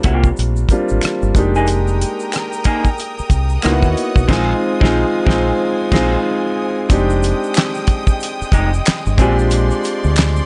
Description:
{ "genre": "R&B, neo-soul", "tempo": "92 BPM", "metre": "4/4", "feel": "swing 61% on 16ths", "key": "F dorian", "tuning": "A4 = 441 Hz", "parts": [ { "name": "electric guitar through a small old amp", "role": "second line", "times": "0.0-9.4 s", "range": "Ab3 to Ab4", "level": "-24 LUFS", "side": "equal", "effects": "none" }, { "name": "clear grand piano", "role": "accompaniment", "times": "0.0-10.5 s", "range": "G3 to G4", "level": "-21 LUFS", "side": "equal", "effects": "none" }, { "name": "damped 70s drum kit", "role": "drums", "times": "0.0-10.4 s", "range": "crash cymbal, handclaps, hi-hat, kick drum, rim click, snare drum", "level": "-19 LUFS", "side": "equal", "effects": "none" }, { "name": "deep dub fingered electric bass", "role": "bass", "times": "0.1-10.4 s", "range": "F1 to Eb2", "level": "-19 LUFS", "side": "equal", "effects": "none" }, { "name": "egg shaker and finger snaps", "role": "percussion", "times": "0.2-10.5 s", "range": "none", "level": "-32 LUFS", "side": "equal", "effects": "none" }, { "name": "rich studio string section", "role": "sustained chords", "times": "1.7-10.5 s", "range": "Ab3 to Eb6", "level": "-29 LUFS", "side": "equal", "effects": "none" } ], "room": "light reverb, studio reverb", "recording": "nothing above 10.7 kHz", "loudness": "-16 LUFS", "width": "mono", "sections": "0.0-6.9 A section; 6.9-10.5 B section", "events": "band accent 4.3-6.9", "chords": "0.0 Gm7; 1.4 Fm11; 3.6 Dbm11; 4.3 Bb9sus4; 6.9 Fm9; 9.2 Bb9" }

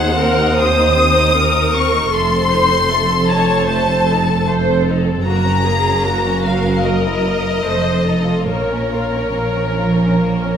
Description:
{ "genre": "classical, slow romantic movement for string orchestra", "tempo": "68-78 BPM", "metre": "4/4", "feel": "rubato", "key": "unclear", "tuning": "A4 = 440 Hz", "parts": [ { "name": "rich studio violin section", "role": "melody", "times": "0.0-10.6 s", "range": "Db5 to Eb6", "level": "-18 LUFS", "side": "left 3 dB", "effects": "none" }, { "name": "rich chamber violin section", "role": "second line", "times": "0.0-10.6 s", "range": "A3 to C5", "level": "-22 LUFS", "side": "left 3 dB", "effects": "none" }, { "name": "rich chamber viola section", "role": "accompaniment", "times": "0.0-10.6 s", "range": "Gb4 to Db5", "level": "-20 LUFS", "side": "right 2 dB", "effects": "none" }, { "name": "bright chamber double bass section", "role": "bass", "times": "0.0-10.6 s", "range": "F1 to Eb2", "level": "-21 LUFS", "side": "right 2 dB", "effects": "none" }, { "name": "warm symphonic cello section", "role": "bass", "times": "0.0-10.6 s", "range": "Eb2 to F3", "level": "-20 LUFS", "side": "right 2 dB", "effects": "none" } ], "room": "wet scoring stage reverb, RT60 1.8 s", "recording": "none", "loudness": "-13 LUFS", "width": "side -8 dB against mid", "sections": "0.0-10.6 A section", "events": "none", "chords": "0.0 Cdim/Eb; 2.1 F7; 5.3 Gb; 6.8 Gb7; 7.7 F7; 8.5 Bbm" }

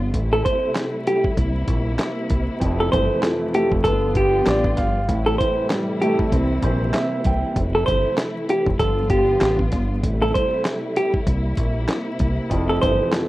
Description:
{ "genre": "hip hop, boom-bap hip-hop", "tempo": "97 BPM", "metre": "4/4", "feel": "swing 60% on 16ths", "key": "A minor", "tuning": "A4 = 437 Hz", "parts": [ { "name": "warm studio string section", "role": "sustained chords", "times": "0.0-13.3 s", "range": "C3 to F4", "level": "-26 LUFS", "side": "equal", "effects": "high-pass filter, low-pass filter, plate reverb" }, { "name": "deep dub fingered electric bass", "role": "bass", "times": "0.0-13.0 s", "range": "F1 to C2", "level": "-23 LUFS", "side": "equal", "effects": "none" }, { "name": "dusty soul sampler-style drum kit", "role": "drums", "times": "0.1-13.3 s", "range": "handclaps, hi-hat, kick drum, snare drum", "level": "-24 LUFS", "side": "equal", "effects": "none" }, { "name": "semi-hollow electric guitar", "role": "melody", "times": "0.3-13.1 s", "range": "G4 to C5", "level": "-20 LUFS", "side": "equal", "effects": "high-pass filter, low-pass filter, slapback echo, plate reverb" }, { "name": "dark baby grand piano", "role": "accompaniment", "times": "2.6-7.6, 12.5-13.3 s", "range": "F2 to G5", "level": "-24 LUFS", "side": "right 1 dB", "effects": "high-pass filter, low-pass filter, plate reverb" } ], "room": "moderate studio reverb, RT60 0.5 s", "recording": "rough home demo mix, vinyl crackle", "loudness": "-18 LUFS", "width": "side -17 dB against mid", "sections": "0.0-13.3 A section", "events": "break 0.0-2.6", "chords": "0.1 Am7; 1.4 C7; 2.6 Fmaj7; 3.9 G7; 5.1 Am7; 6.3 C7; 7.6 Fmaj7; 8.8 G7; 10.0 Am7; 11.3 C7; 12.5 Fmaj7" }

